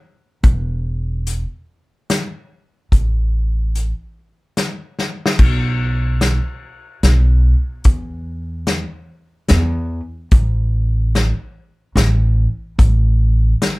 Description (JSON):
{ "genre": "klezmer", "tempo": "73 BPM", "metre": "3/4", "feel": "straight", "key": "unclear", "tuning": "A4 = 441 Hz", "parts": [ { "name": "upright bass", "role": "bass", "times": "0.4-13.5 s", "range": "E1 to E2", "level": "-16 LUFS", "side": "equal", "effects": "none" }, { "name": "vintage drum kit", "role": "drums", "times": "0.4-13.8 s", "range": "crash cymbal, hi-hat, kick drum, snare drum", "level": "-16 LUFS", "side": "left 1 dB", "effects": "none" } ], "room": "light reverb", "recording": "heard from further back in the room", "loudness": "-15 LUFS", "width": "side -22 dB against mid", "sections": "0.0-5.4 A section; 5.4-13.8 B section", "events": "drum fill 5.0-5.4", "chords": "none", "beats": "| 0.44 1.26 2.09 | 2.92 3.74 4.57 | 5.39 6.21 7.04 | 7.86 8.68 9.50 | 10.32 11.14 11.97 | 12.79 13.61" }